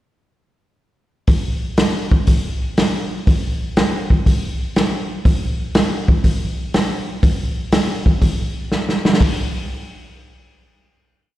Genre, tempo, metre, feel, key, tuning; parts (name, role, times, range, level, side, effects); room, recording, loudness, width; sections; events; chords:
rock; 121 BPM; 4/4; swing 68% on 8ths
vintage drum kit; drums; 1.3-9.4 s; hi-hat, kick drum, snare drum; -16 LUFS; equal
little or no reverb; live gig heard through the venue's PA, recital hall reverb; -16 LUFS; side -15 dB against mid
1.3-9.2 riff; 9.2-11.2 final hit
drum fill 8.7-9.2